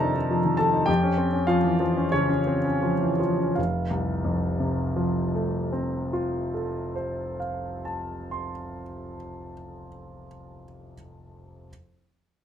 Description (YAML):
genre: classical, virtuoso piano study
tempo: 77-106 BPM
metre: 4/4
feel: rubato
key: F major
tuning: A4 = 442 Hz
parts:
  - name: clear grand piano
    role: solo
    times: 0.0-11.7 s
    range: F1 to C6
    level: -24 LUFS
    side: equal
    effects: none
room: light reverb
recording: none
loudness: -23 LUFS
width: side -9 dB against mid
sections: 0.0-3.6 A section; 3.6-9.5 B section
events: slowing down 0.0-3.6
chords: 0.0 F7; 0.9 Dbmaj7#11/F; 3.6 F